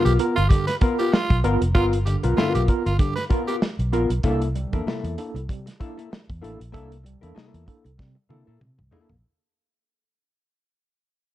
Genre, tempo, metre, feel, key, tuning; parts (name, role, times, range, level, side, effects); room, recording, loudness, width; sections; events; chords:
funk; 96 BPM; 4/4; swing 56% on 16ths; A4 = 440 Hz
raspy tenor saxophone; second line; 0.0-3.6 s; F4 to B4; -28 LUFS; right 3 dB; plate reverb
hollow-body jazz guitar; accompaniment; 0.0-9.1 s; Bb3 to B4; -27 LUFS; left 6 dB; plate reverb
tine electric piano; stabs; 0.0-9.1 s; G2 to A#4; -27 LUFS; right 3 dB; overdrive, fast stereo tremolo
fingered electric bass; bass; 0.1-9.2 s; F1 to C3; -23 LUFS; equal
warm soul drum kit; drums; 0.1-9.2 s; hi-hat, kick drum, snare drum, toms; -22 LUFS; equal; vintage 12-bit sampler grit
moderate studio reverb, RT60 0.6 s; dark, warm production; -19 LUFS; side -14 dB against mid
0.0-9.2 A section
fade-out 0.0-9.2; drum fill 8.0-9.2
0.0 G7#9; 4.2 C13